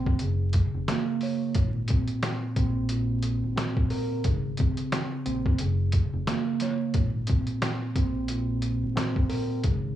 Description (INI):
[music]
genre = hip hop, boom-bap hip-hop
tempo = 89 BPM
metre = 4/4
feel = swing 57% on 16ths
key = Ab mixolydian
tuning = A4 = 435 Hz
[part]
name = mellow tine electric piano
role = accompaniment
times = 0.0-10.0 s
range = Bb2 to Db5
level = -28 LUFS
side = right 1 dB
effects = fast stereo tremolo, cassette tape, high-pass filter, low-pass filter
[part]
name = deep dub fingered electric bass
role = bass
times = 0.0-9.9 s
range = F1 to Bb1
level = -30 LUFS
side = equal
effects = transformer saturation
[part]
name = trip hop sampler-style drum kit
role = drums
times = 0.1-9.8 s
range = hi-hat, kick drum, snare drum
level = -27 LUFS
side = equal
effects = none
[sound]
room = little or no reverb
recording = dry, gritty hardware recording, transformer saturation, vinyl crackle, small room ambience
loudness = -24 LUFS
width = side -12 dB against mid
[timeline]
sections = 0.0-10.0 A section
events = none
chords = 0.2 Gb; 1.6 Abadd9; 4.2 Db5/Ab; 5.6 Gb; 6.9 Abadd9